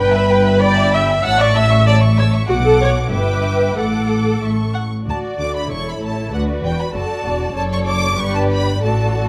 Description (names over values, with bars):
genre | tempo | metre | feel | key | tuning
quick classical-period movement for string orchestra | 95 BPM | 2/4 | straight | D major | A4 = 439 Hz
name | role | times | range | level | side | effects
warm symphonic violin section | melody | 0.0-9.3 s | F#5 to E6 | -28 LUFS | equal | none
warm symphonic violin section | second line | 0.0-9.3 s | E4 to C#6 | -26 LUFS | equal | none
rich symphonic viola section | accompaniment | 0.0-9.3 s | F#4 to F#5 | -21 LUFS | equal | none
dark symphonic cello section | bass | 0.0-9.3 s | D2 to D3 | -23 LUFS | equal | none
rich symphonic double bass section | bass | 0.0-9.3 s | E1 to D2 | -23 LUFS | equal | none
room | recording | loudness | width
moderate scoring stage reverb, RT60 1.7 s | close, detailed microphones | -17 LUFS | mono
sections
0.0-5.1 A section; 5.1-9.3 B section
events
none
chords
0.0 Em/G; 1.2 A; 2.5 Bm; 3.1 Em7/G; 3.8 D/A; 5.1 D; 5.7 A/E; 6.3 D; 7.6 D/F#; 8.2 G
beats
0.62 | 1.25 1.87 | 2.49 3.12 | 3.77 4.42 | 5.07 5.70 | 6.33 6.95 | 7.57 8.19 | 8.83